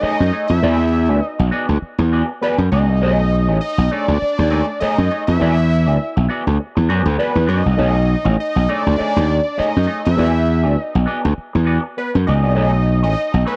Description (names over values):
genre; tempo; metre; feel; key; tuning
funk; 100 BPM; 4/4; swing 56% on 16ths; B mixolydian; A4 = 437 Hz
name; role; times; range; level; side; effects
fat analog lead; melody; 0.0-13.6 s; B4 to E5; -24 LUFS; equal; phaser
semi-hollow electric guitar; accompaniment; 0.0-13.6 s; A3 to D5; -26 LUFS; equal; wah, spring reverb
gritty slap bass; bass; 0.0-13.4 s; A1 to F#2; -17 LUFS; equal; overdrive
room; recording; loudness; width
little or no reverb; dry, close 1970s-style studio recording; -17 LUFS; mono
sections
0.0-13.6 A section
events
none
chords
0.0 B13 (rootless); 0.6 E9; 3.0 B13; 5.4 E9; 7.8 B13; 10.2 E9; 12.6 B13